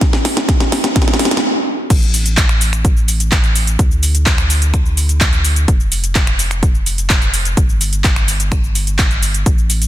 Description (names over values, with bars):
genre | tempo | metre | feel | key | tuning
EDM, festival progressive house | 127 BPM | 4/4 | straight | unclear | A4 = 440 Hz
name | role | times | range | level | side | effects
electronic kick drum | drums | 0.0-9.6 s | none | -14 LUFS | equal | none
house drum kit | drums | 0.0-9.9 s | crash cymbal, finger snaps, handclaps, hi-hat, shaker, snare drum | -17 LUFS | equal | none
saturated sub bass | bass | 1.9-9.9 s | F1 to D2 | -17 LUFS | equal | sidechain pumping
room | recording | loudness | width
light reverb | dense, heavily limited modern master | -12 LUFS | side -13 dB against mid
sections
0.0-1.9 A section; 1.9-9.9 B section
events
build-up 0.0-1.9; drum fill 0.0-1.4; stop 1.4-1.9; drop 1.9-9.9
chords
none